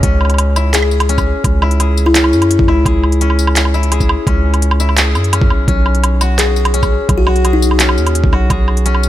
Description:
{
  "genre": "half-time drum and bass",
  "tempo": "170 BPM",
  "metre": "4/4",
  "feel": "half-time",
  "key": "C# minor",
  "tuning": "A4 = 441 Hz",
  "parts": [
    { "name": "koto", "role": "arpeggios", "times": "0.0-9.1 s", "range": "C#4 to G#4", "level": "-20 LUFS", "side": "left 3 dB", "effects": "vintage 12-bit sampler grit, ping-pong delay" },
    { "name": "long sustained 808-style bass", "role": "bass", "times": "0.0-9.1 s", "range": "B1 to F#2", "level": "-13 LUFS", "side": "equal", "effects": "none" },
    { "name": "electronic kick drum", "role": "drums", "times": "0.0-8.6 s", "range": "none", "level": "-14 LUFS", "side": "equal", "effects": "overdrive" },
    { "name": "organic electronic drum kit", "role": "drums", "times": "0.0-9.1 s", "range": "handclaps, hi-hat, tambourine, woodblock", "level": "-17 LUFS", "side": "right 1 dB", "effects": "none" },
    { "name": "buzzing kalimba", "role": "melody", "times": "0.7-2.2, 6.4-7.9 s", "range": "D#4 to G#4", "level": "-18 LUFS", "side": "left 2 dB", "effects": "ping-pong delay" }
  ],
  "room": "light reverb, digital ambience",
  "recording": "none",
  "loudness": "-10 LUFS",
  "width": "side -13 dB against mid",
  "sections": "0.0-9.1 A section",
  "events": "none",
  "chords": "0.0 C#m"
}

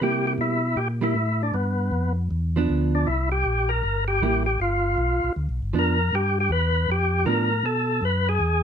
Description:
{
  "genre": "soul jazz organ trio",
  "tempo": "157 BPM",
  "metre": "4/4",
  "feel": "swing 64% on 8ths",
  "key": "G mixolydian",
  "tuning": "A4 = 440 Hz",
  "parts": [
    { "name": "percussive tonewheel organ", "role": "melody", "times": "0.0-8.6 s", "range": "B3 to B4", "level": "-24 LUFS", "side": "left 1 dB", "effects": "overdrive, fast rotary speaker" },
    { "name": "vintage hollow-body jazz guitar", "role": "accompaniment", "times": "0.0-7.5 s", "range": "F3 to E4", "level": "-25 LUFS", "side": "right 5 dB", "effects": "none" },
    { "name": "mellow tonewheel organ", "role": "bass", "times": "0.0-8.6 s", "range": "G1 to C3", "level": "-24 LUFS", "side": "left 1 dB", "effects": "chorus vibrato, slow rotary speaker" }
  ],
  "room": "light reverb",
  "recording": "none",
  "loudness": "-21 LUFS",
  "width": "side -8 dB against mid",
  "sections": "0.0-8.6 A section",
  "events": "none",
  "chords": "0.0 C7; 1.5 G7; 3.1 C7; 4.6 G7; 7.6 B5"
}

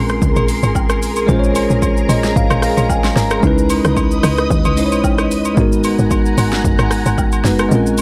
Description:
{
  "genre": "amapiano",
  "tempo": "112 BPM",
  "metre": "4/4",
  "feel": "swing 55% on 16ths",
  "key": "unclear",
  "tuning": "A4 = 441 Hz",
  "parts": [
    { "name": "bell-like tine electric piano", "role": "accompaniment", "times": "0.0-8.0 s", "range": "Ab3 to Bb5", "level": "-20 LUFS", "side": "equal", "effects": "none" },
    { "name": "soft string machine", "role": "sustained chords", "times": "0.0-8.0 s", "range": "Ab4 to Eb6", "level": "-25 LUFS", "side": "equal", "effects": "ensemble chorus, sidechain pumping" },
    { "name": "tight log drum bass", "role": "bass", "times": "0.0-8.0 s", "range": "Gb1 to Eb2", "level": "-21 LUFS", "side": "equal", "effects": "none" },
    { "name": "deep house drum kit", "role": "drums", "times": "0.1-8.0 s", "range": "hi-hat, kick drum, rim click, shaker, snare drum", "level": "-20 LUFS", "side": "equal", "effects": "none" },
    { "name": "agogo bells and woodblock", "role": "percussion", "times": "0.4-8.0 s", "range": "none", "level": "-28 LUFS", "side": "equal", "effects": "none" }
  ],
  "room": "little or no reverb",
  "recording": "dry, gritty hardware recording",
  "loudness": "-15 LUFS",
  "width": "mono",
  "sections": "0.0-8.0 A section",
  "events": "tine electric piano fill 1.8-3.4; kick muted 7.7-8.0",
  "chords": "0.0 Bbm9; 3.4 Dbm9; 5.6 Abm9"
}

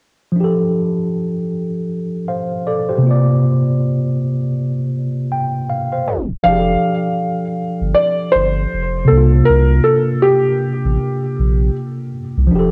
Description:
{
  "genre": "hip hop",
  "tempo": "79 BPM",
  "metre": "4/4",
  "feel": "swing 58% on 16ths",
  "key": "F major",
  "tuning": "A4 = 440 Hz",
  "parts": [
    { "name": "tine electric piano", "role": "accompaniment", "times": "0.3-12.7 s", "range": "C3 to A5", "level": "-19 LUFS", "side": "equal", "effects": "overdrive, cassette tape, low-pass filter" },
    { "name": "felt-muted upright piano", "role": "melody", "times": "6.4-11.7 s", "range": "G4 to F5", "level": "-19 LUFS", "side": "equal", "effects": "low-pass filter, cassette tape, tape echo" },
    { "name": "warm sub bass", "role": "bass", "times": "6.5-12.7 s", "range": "F1 to C2", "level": "-18 LUFS", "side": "equal", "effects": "none" }
  ],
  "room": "moderate spring reverb, RT60 1.3 s, small room ambience",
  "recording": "home recording on cassette, tape stop",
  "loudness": "-17 LUFS",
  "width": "mono",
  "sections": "0.4-6.4 A section; 6.4-12.7 B section",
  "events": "tine electric piano fill 4.9-6.4; tape stop 6.1-6.4",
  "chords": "0.4 F69; 3.0 C9sus4; 6.4 F69; 9.1 C9sus4"
}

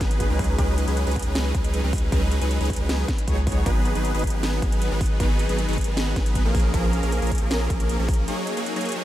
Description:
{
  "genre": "future bass",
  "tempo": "156 BPM",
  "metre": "4/4",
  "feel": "half-time",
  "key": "G# dorian",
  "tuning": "A4 = 440 Hz",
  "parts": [
    { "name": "supersaw chords", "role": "riff", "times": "0.0-9.0 s", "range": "E#3 to C#5", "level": "-26 LUFS", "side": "equal", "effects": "wide subtle chorus, sidechain pumping, tape echo" },
    { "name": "saturated sub bass", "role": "bass", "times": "0.0-8.3 s", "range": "G#1 to C#2", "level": "-24 LUFS", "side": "equal", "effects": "sidechain pumping" },
    { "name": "electronic kick drum", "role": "drums", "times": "0.0-8.2 s", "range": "none", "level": "-24 LUFS", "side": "equal", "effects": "overdrive" },
    { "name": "trap drum kit", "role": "drums", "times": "0.0-9.0 s", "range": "hi-hat, snare drum", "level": "-33 LUFS", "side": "right 1 dB", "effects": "overdrive" }
  ],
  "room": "light reverb",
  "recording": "none",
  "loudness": "-20 LUFS",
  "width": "side -13 dB against mid",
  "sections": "0.0-9.0 A section",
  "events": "break 8.3-9.0",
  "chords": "0.4 C#9sus4; 3.5 G#m7; 6.5 A#m7; 8.3 F#69"
}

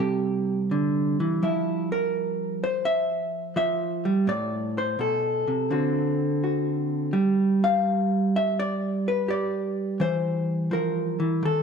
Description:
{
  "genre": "solo jazz",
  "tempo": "84 BPM",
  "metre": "4/4",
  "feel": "swing 68% on 8ths",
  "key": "unclear",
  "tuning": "A4 = 438 Hz",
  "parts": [
    { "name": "vintage hollow-body jazz guitar", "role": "solo", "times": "0.0-11.6 s", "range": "A2 to F5", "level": "-23 LUFS", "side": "equal", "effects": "none" }
  ],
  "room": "wet echo chamber reverb, RT60 1.6 s",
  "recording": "dark, warm production",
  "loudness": "-23 LUFS",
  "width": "side -6 dB against mid",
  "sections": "0.0-11.6 A section",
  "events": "none",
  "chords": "0.0 Cadd9; 1.4 Fsus2; 4.3 Am; 5.7 D7; 7.1 N.C.; 10.0 Edim"
}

